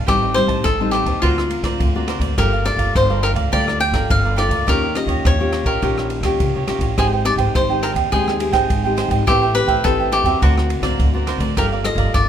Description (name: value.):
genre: samba and choro.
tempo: 104 BPM.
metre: 4/4.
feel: straight.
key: unclear.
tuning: A4 = 438 Hz.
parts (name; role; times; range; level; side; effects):
cavaquinho; accompaniment; 0.0-12.3 s; Eb4 to A5; -24 LUFS; right 10 dB; none.
nylon-string guitar; accompaniment; 0.0-12.3 s; A2 to B4; -24 LUFS; left 4 dB; none.
upright bass; bass; 0.0-12.3 s; G1 to E2; -21 LUFS; equal; none.
cavaquinho; melody; 0.1-12.3 s; E#4 to G5; -20 LUFS; left 2 dB; none.
open jazz drum kit; drums; 0.1-12.3 s; kick drum, ride cymbal, rim click; -22 LUFS; equal; none.
room: light reverb.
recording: minimal, uncompressed stereo recording.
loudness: -15 LUFS.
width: side -9 dB against mid.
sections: 0.0-12.3 A section.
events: none.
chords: 0.1 Am7b5; 1.2 D7alt; 2.4 Gm9; 4.7 Eb9; 7.0 Abmaj7; 9.3 Am9; 10.4 Daug7; 11.6 Gm9.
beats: | 0.08 0.65 1.23 1.80 | 2.38 2.96 3.53 4.11 | 4.68 5.25 5.83 6.40 | 6.98 7.55 8.13 8.70 | 9.27 9.85 10.42 11.00 | 11.57 12.14.